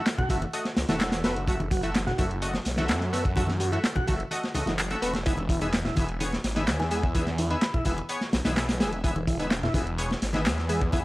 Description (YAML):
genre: breakbeat, breaks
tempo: 127 BPM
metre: 4/4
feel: straight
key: F# dorian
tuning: A4 = 440 Hz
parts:
  - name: band-passed chord stab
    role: stabs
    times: 0.0-11.0 s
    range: A3 to E5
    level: -33 LUFS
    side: equal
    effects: chorus, tape echo
  - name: crunchy breakbeat drum kit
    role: drums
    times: 0.1-11.0 s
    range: hi-hat, kick drum, snare drum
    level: -28 LUFS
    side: equal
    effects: none
  - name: punchy analog drum machine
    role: drums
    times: 0.1-11.0 s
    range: handclaps, hi-hat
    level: -35 LUFS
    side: equal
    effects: none
  - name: tonewheel organ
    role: riff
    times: 0.2-11.0 s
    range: D#3 to F#4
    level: -32 LUFS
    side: equal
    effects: slow rotary speaker, tube saturation, tape echo
  - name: congas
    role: percussion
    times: 0.2-11.0 s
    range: none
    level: -34 LUFS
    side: left 1 dB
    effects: none
  - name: phased detuned saw bass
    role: bass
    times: 0.3-11.0 s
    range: E1 to F#2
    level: -30 LUFS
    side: equal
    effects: phaser, tube saturation
  - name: soft synth bell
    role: melody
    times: 6.8-7.7 s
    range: G#5 to B5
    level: -38 LUFS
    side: left 1 dB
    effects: chorus, phaser, small speaker sound, tape echo
room: small room ambience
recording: dry, gritty hardware recording, vinyl crackle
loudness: -24 LUFS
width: side -19 dB against mid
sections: 0.0-11.0 A section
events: none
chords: 0.0 F#m7; 5.3 E